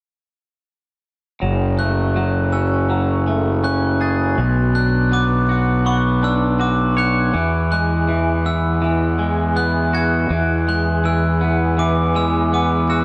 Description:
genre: rock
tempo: 81 BPM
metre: 4/4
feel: straight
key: F# minor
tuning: A4 = 440 Hz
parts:
  - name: twangy electric guitar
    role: arpeggios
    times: 1.4-13.0 s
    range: B2 to C#5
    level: -24 LUFS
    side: equal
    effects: subtle chorus, tape echo
  - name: fuzz fingered electric bass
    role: bass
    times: 1.4-13.0 s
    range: F#1 to E2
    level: -20 LUFS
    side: equal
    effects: overdrive
  - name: glockenspiel with brass mallets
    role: arpeggios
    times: 1.8-13.0 s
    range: C#6 to A6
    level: -26 LUFS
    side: equal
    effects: tape echo
room: moderate plate reverb, RT60 2.6 s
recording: dreamy mix soaked in reverb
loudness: -18 LUFS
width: mono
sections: 1.4-13.0 A section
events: none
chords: 1.4 F#madd9; 4.4 Bmadd9; 7.3 Eadd9

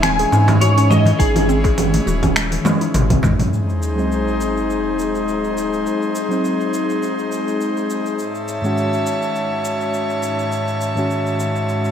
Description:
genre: organic downtempo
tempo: 103 BPM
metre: 4/4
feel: swing 55% on 16ths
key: G# phrygian dominant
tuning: A4 = 443 Hz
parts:
  - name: clean lap steel guitar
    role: melody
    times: 0.0-2.9 s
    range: G#4 to G#5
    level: -20 LUFS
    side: equal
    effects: ensemble chorus, diffuse ambient delay
  - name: airy breathy pad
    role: sustained chords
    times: 0.0-11.9 s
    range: G#2 to A5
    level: -21 LUFS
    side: left 2 dB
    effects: chorus, sidechain pumping
  - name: mallet-like synth pluck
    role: arpeggios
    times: 0.0-3.5 s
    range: D#3 to G#4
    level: -23 LUFS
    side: left 1 dB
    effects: chorus, phaser, diffuse ambient delay
  - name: round analog bass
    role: bass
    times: 0.0-3.5 s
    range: D#1 to G#2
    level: -18 LUFS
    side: equal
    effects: sidechain pumping
  - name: deep house drum kit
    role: drums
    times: 0.0-11.9 s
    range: congas, finger snaps, hi-hat, shaker, toms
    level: -22 LUFS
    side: right 2 dB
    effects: overdrive
  - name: darbuka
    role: percussion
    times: 0.3-3.4 s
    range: none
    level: -26 LUFS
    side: right 1 dB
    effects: none
  - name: electronic kick drum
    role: drums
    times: 1.2-3.4 s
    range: none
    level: -19 LUFS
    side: equal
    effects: none
  - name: sub drop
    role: sound effects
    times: 3.5-5.9 s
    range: none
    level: -25 LUFS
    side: equal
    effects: none
  - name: muted felt-like synth keys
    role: accompaniment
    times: 4.0-11.9 s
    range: G#2 to F#4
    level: -23 LUFS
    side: equal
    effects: chorus, tremolo, sidechain pumping, diffuse ambient delay
room: moderate plate reverb, RT60 1.3 s, digital ambience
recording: dreamy mix soaked in reverb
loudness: -16 LUFS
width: side -8 dB against mid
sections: 0.0-3.5 A section; 3.5-11.9 B section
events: drum fill 2.7-3.5; impact 3.5-5.9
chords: 0.0 Amaj7 (rootless); 3.5 G#7; 8.2 Amaj7/G#

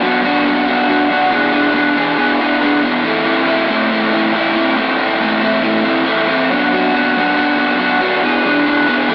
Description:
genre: rock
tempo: 139 BPM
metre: 4/4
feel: straight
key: A dorian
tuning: A4 = 439 Hz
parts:
  - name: crunchy overdriven guitar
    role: solo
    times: 0.0-9.1 s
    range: A2 to A4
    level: -14 LUFS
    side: equal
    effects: spring reverb, cassette tape
room: moderate booth ambience, RT60 0.2 s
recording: home recording on cassette, AM radio sound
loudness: -14 LUFS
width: mono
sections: 0.0-9.1 A section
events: none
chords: 0.0 Bm; 1.3 E7/B; 3.0 Am; 6.5 Bm; 8.2 E7/B

